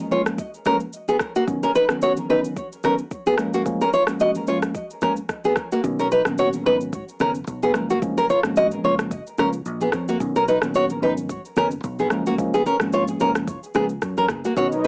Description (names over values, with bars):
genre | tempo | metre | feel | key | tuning
afrobeats | 110 BPM | 4/4 | swing 55% on 16ths | F# major | A4 = 441 Hz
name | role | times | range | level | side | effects
mellow tine electric piano | accompaniment | 0.0-14.7 s | F#2 to C#4 | -29 LUFS | equal | cassette tape
nylon-string guitar | riff | 0.1-14.9 s | A#3 to D#5 | -23 LUFS | equal | cassette tape, tape echo
congas | percussion | 0.1-14.9 s | none | -41 LUFS | equal | none
afro-pop drum kit | drums | 0.3-14.9 s | kick drum, rim click, shaker | -29 LUFS | equal | vintage 12-bit sampler grit
fingered electric bass | bass | 5.8-14.9 s | F#1 to F#2 | -34 LUFS | equal | none
warm analog pad | sustained chords | 14.6-14.9 s | D#4 to D#5 | -26 LUFS | equal | chorus, cassette tape
room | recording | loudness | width
moderate studio reverb, RT60 0.5 s | home recording on cassette, small speaker sound | -22 LUFS | mono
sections
0.0-14.6 A section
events
none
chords
0.0 F#maj7; 1.5 Badd9; 3.4 F#maj7; 5.8 Badd9; 7.7 F#maj7; 10.2 Badd9; 12.1 F#maj7